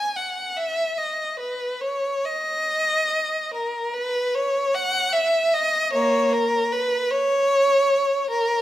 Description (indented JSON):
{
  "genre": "classical, free, expressive piece for unaccompanied violin",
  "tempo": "50 BPM (dotted quarters)",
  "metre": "6/8",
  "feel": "rubato",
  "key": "unclear",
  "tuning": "A4 = 441 Hz",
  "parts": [
    { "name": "rich violin", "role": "solo", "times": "0.0-8.6 s", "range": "A#3 to G#5", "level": "-20 LUFS", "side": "equal", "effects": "none" }
  ],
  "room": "moderate recital hall reverb, RT60 1.6 s",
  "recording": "none",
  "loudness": "-20 LUFS",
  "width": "side -13 dB against mid",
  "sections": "0.0-8.6 A section",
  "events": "none",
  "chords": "none"
}